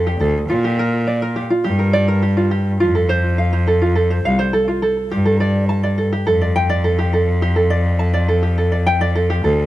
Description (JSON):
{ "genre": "folktronica", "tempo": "104 BPM", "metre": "4/4", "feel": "straight", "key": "G minor", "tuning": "A4 = 441 Hz", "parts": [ { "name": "tenor ukulele", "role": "arpeggios", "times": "0.0-9.7 s", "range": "F4 to A5", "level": "-18 LUFS", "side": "right 1 dB", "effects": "tape echo" }, { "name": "clear cello", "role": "bass", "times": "0.0-9.6 s", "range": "C2 to Bb2", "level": "-17 LUFS", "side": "equal", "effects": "none" } ], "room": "light reverb", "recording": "none", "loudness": "-15 LUFS", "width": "side -15 dB against mid", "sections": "0.0-9.7 A section", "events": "none", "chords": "0.0 Gsus2; 0.5 Bb5; 2.8 F; 5.1 Gsus2" }